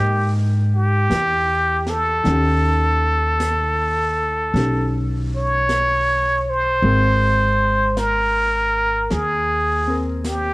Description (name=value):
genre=jazz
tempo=52 BPM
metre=4/4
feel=swing 68% on 8ths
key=Ab major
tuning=A4 = 440 Hz
part: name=trumpet with plunger mute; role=melody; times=0.0-10.5 s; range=G4 to Db5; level=-18 LUFS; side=equal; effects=cassette tape
part: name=hollow-body jazz guitar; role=accompaniment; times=0.0-10.5 s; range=Eb3 to Bb4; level=-26 LUFS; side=left 2 dB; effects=cassette tape
part: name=upright bass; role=bass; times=0.0-10.5 s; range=Ab1 to Ab2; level=-21 LUFS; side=equal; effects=none
part: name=jazz brush drum kit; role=drums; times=1.1-10.5 s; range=brushed snare drum, hi-hat, snare drum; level=-33 LUFS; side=equal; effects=cassette tape
room=studio reverb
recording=home recording on cassette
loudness=-16 LUFS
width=side -22 dB against mid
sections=0.0-10.5 A section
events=none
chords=0.0 Fm11 (rootless); 2.3 Ebaug7; 6.8 Abadd9